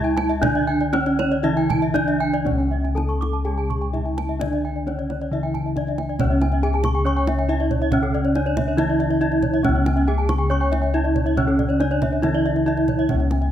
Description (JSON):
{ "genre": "Balinese gamelan", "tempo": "118-139 BPM", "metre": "4/4", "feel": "straight", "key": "C# pelog", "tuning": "A4 = 439 Hz", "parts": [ { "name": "gamelan-type bronze metallophone", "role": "melody", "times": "0.0-13.5 s", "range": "C#4 to C#5", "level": "-23 LUFS", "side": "right 1 dB", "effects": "none" }, { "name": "gamelan-type bronze metallophone", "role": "accompaniment", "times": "0.0-13.5 s", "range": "C#3 to C#4", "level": "-29 LUFS", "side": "right 1 dB", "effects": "none" }, { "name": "gamelan-type bronze metallophone", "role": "arpeggios", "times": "0.0-13.4 s", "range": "C#5 to C#6", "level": "-28 LUFS", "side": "left 5 dB", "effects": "none" }, { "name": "gamelan-type bossed gongs", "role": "bass", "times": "0.0-13.5 s", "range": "C#2 to D4+20c", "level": "-23 LUFS", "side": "left 1 dB", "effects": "none" }, { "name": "gamelan-type bronze metallophone", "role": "arpeggios", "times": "0.2-13.5 s", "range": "A4-20c to D6+20c", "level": "-30 LUFS", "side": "right 4 dB", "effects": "none" }, { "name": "kendang", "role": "percussion", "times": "0.2-13.5 s", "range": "none", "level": "-29 LUFS", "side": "right 4 dB", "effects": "none" } ], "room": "light reverb", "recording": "close, detailed microphones", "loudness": "-18 LUFS", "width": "side -10 dB against mid", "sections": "0.0-6.2 A section; 6.2-13.5 B section", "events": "none", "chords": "none" }